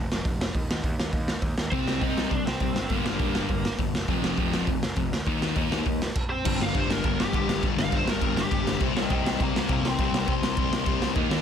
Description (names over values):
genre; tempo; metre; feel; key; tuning
punk rock; 203 BPM; 4/4; straight; G minor; A4 = 441 Hz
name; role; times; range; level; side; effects
fuzz picked electric bass; bass; 0.0-11.4 s; F1 to Eb2; -32 LUFS; right 1 dB; overdrive
raw garage drum kit; drums; 0.1-11.4 s; crash cymbal, hi-hat, kick drum, snare drum; -27 LUFS; right 1 dB; none
lead guitar through a small cranked amp; melody; 1.7-3.8, 6.3-11.2 s; Bb3 to C6; -31 LUFS; right 1 dB; overdrive
distorted electric guitar; riff; 1.7-6.0, 11.2-11.4 s; F2 to Eb4; -32 LUFS; right 18 dB; distortion
sludgy distorted guitar; riff; 1.7-11.4 s; F2 to Eb4; -29 LUFS; left 16 dB; overdrive
sludgy distorted guitar; riff; 6.5-11.4 s; G2 to Eb4; -33 LUFS; right 1 dB; overdrive
room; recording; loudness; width
little or no reverb; dense, heavily limited modern master; -23 LUFS; side -8 dB against mid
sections
0.0-6.5 A section; 6.5-11.4 B section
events
lead electric guitar solo 6.5-11.4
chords
0.0 N.C.; 1.7 Cm; 2.8 Gm; 3.9 F5; 5.3 Eb5; 6.5 G5; 8.8 C5